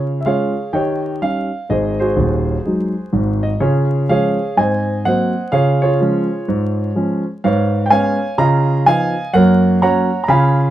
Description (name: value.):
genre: jazz, stride piano.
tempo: 125 BPM.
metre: 4/4.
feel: swing 62% on 8ths.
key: Db major, F# major from 7.4 s.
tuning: A4 = 440 Hz.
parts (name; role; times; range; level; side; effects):
warm concert grand piano; solo; 0.0-10.7 s; Eb1 to B5; -14 LUFS; right 1 dB; none.
room: moderate studio reverb, RT60 0.7 s.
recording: dark, warm production, vinyl crackle.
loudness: -14 LUFS.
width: side -13 dB against mid.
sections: 0.0-10.7 A section.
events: none.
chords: 0.0 Db; 0.7 Eb7; 1.7 Ab7; 3.6 Db; 4.6 Ab9; 5.5 Db; 7.4 C#7/G#; 8.4 C#13; 9.3 F#.